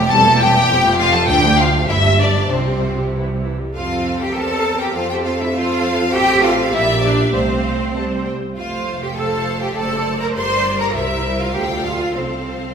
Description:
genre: quick classical-period movement for string orchestra.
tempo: 100 BPM.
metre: 2/4.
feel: straight.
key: F major.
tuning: A4 = 441 Hz.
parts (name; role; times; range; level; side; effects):
bright symphonic violin section; second line; 0.0-12.7 s; C4 to C6; -22 LUFS; left 2 dB; none.
rich studio viola section; accompaniment; 0.0-12.7 s; E3 to C5; -22 LUFS; right 2 dB; none.
clear symphonic double bass section; bass; 0.0-12.7 s; E1 to F2; -22 LUFS; right 2 dB; none.
rich symphonic cello section; bass; 0.0-12.7 s; D2 to C5; -21 LUFS; right 2 dB; none.
warm symphonic violin section; melody; 0.1-12.7 s; C5 to A5; -20 LUFS; left 3 dB; none.
room: wet recital hall reverb, RT60 1.5 s.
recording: recorded in a church or concert hall.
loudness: -15 LUFS.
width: side -7 dB against mid.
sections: 0.0-3.7 A section; 3.7-12.7 B section.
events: none.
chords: 0.1 C7/E; 0.7 F; 1.3 Dm; 1.9 Gm; 2.5 Csus4; 3.1 C; 3.7 F; 4.4 C7/E; 4.9 F; 6.1 F/A; 6.7 Gm/Bb; 7.3 F/C; 8.0 C5; 8.6 F; 9.8 D7/F#; 10.4 Gm; 10.9 C7; 11.5 Dm; 12.2 F/C.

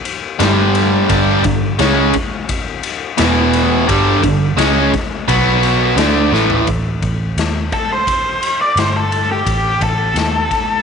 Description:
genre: blues rock power trio and southern rock.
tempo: 86 BPM.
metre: 4/4.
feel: straight.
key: unclear.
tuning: A4 = 440 Hz.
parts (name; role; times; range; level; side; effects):
raw garage drum kit; drums; 0.1-10.7 s; kick drum, ride cymbal, snare drum, toms; -20 LUFS; left 4 dB; none.
biting overdriven guitar; riff; 0.4-6.7 s; E2 to D4; -14 LUFS; right 1 dB; none.
vintage muted picked electric bass; bass; 0.4-10.5 s; E1 to Eb2; -18 LUFS; right 1 dB; none.
octave-fuzz lead guitar; melody; 7.7-10.8 s; G4 to D5; -16 LUFS; equal; distortion, slapback echo.
room: moderate spring reverb, RT60 2.5 s.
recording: 1960s-style stereo, nothing above 10.5 kHz.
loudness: -12 LUFS.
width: side -6 dB against mid.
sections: 0.0-6.7 A section; 6.7-10.8 B section.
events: drum fill 6.3-6.7; lead electric guitar solo 6.7-10.8.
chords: 0.4 G5; 3.2 E5; 3.9 G5; 5.3 B5; 6.0 Asus4; 6.7 Adim; 8.8 Gsus24; 9.5 Gsus2/A.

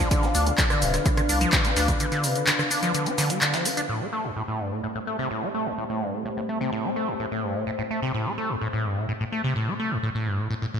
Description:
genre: acid house.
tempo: 127 BPM.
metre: 4/4.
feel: straight.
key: A minor.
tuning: A4 = 441 Hz.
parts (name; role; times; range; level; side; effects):
dark analog pad; sustained chords; 0.0-10.8 s; A3 to F5; -31 LUFS; left 1 dB; chorus, sidechain pumping.
liquid acid bass; riff; 0.0-10.8 s; G2 to D4; -26 LUFS; equal; phaser, overdrive, ping-pong delay.
saturated sub bass; bass; 0.0-1.9 s; D1 to D2; -26 LUFS; equal; sidechain pumping.
breakbeat sampler-style drum kit; drums; 0.1-3.9 s; hi-hat, snare drum, tambourine; -34 LUFS; left 1 dB; none.
electronic kick drum; drums; 0.1-2.0 s; none; -24 LUFS; equal; none.
punchy analog drum machine; drums; 0.1-4.0 s; cabasa, crash cymbal, handclaps, hi-hat, rim click; -26 LUFS; equal; low-pass filter on hats, low-pass filter on perc, low-pass filter on snare, low-pass filter on cymbals, low-pass filter on room, gated reverb.
room: wet lush hall reverb, RT60 1.9 s.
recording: bright 1980s-style digital production.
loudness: -23 LUFS.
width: side -7 dB against mid.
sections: 0.0-3.9 A section; 3.9-10.8 B section.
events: filter sweep on analog synth pad 3.9-10.8.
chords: 0.0 Dm7; 3.9 Am7.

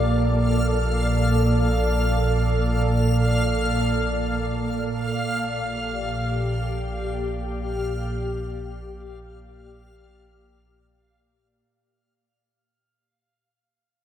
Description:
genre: ambient.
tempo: free time.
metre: none.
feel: none.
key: Bb major.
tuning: A4 = 440 Hz.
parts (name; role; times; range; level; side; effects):
glassy FM pad; sustained chords; 0.0-11.7 s; Bb2 to D5; -23 LUFS; right 1 dB; ensemble chorus, built-in reverb.
warm sub bass; bass; 0.0-11.6 s; Bb1; -27 LUFS; equal; none.
backwards swelling texture; texture; 0.0-11.7 s; F5 to F6; -30 LUFS; equal; built-in reverb.
room: wet echo chamber reverb, RT60 2.3 s.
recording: echo-heavy mix.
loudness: -21 LUFS.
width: side -10 dB against mid.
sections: 0.0-11.7 A section.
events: fade-out 3.0-11.7.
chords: 0.0 Bbmaj7.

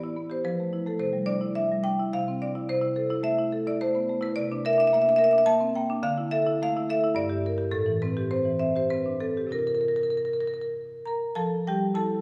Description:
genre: classical, contemporary piece for solo marimba.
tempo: 95-110 BPM.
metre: 3/4.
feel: rubato.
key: A minor.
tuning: A4 = 440 Hz.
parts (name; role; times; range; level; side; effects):
marimba with medium hard mallets; solo; 0.0-12.2 s; G2 to Bb5; -26 LUFS; equal; none.
room: wet concert hall reverb, RT60 2.1 s.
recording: small room reverb.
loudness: -26 LUFS.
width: mono.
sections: 0.0-11.4 A section.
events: none.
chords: 0.5 Fmaj7#11; 1.0 Cadd9; 2.1 Dm9/C; 2.7 Am/C; 4.4 C9; 6.0 Dsus2; 7.2 Gm; 7.7 Am7; 9.5 C9sus4; 11.4 Fmaj9.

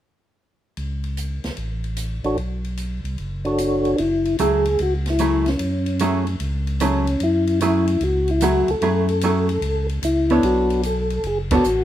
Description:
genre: soul jazz organ trio.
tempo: 149 BPM.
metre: 4/4.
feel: swing 67% on 8ths.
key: F# minor.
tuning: A4 = 440 Hz.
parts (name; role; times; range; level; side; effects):
tonewheel organ; bass; 0.8-11.8 s; F#1 to F#2; -23 LUFS; equal; overdrive, chorus vibrato, slow rotary speaker.
open jazz drum kit; drums; 0.8-11.8 s; hi-hat, kick drum, ride cymbal, snare drum; -33 LUFS; left 1 dB; none.
percussive tonewheel organ; melody; 2.2-11.8 s; C#4 to C#5; -20 LUFS; left 1 dB; slow rotary speaker, chorus vibrato.
hollow-body jazz guitar; accompaniment; 4.4-11.6 s; F#3 to C#5; -21 LUFS; right 2 dB; none.
room: light reverb.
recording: minimal, uncompressed stereo recording.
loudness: -18 LUFS.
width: side -12 dB against mid.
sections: 0.8-4.0 A section; 4.0-11.8 B section.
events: band accent 11.4.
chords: 0.8 F#m/C# (rootless); 2.4 Bm7; 4.0 F#m9; 10.4 Bm9.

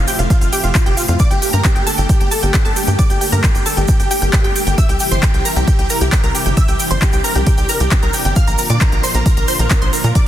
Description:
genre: uplifting trance.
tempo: 134 BPM.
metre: 4/4.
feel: straight.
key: unclear.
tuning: A4 = 439 Hz.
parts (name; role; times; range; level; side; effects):
big supersaw lead; melody; 0.0-10.2 s; F4 to F5; -21 LUFS; equal; phaser, sidechain pumping, dub echo.
wide unison pluck; second line; 0.0-10.2 s; F5 to F6; -25 LUFS; right 1 dB; sidechain pumping, ping-pong delay.
analog string pad; sustained chords; 0.0-10.3 s; A2 to G4; -24 LUFS; left 1 dB; ensemble chorus, sidechain pumping.
tight sequencer bass; bass; 0.0-10.1 s; F1 to Bb2; -17 LUFS; equal; sidechain pumping.
downlifter; sound effects; 0.0-1.2 s; none; barely audible; none; none.
big-room dance drum kit; drums; 0.1-10.2 s; handclaps, hi-hat; -22 LUFS; equal; none.
egg shaker; percussion; 0.1-10.2 s; none; -26 LUFS; right 5 dB; none.
electronic kick drum; drums; 0.3-10.2 s; none; -14 LUFS; equal; none.
room: little or no reverb.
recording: dense, heavily limited modern master.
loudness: -12 LUFS.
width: side -12 dB against mid.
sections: 0.0-10.3 A section.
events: none.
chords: 0.0 F; 1.2 Gmadd9; 4.8 C; 8.4 Bb.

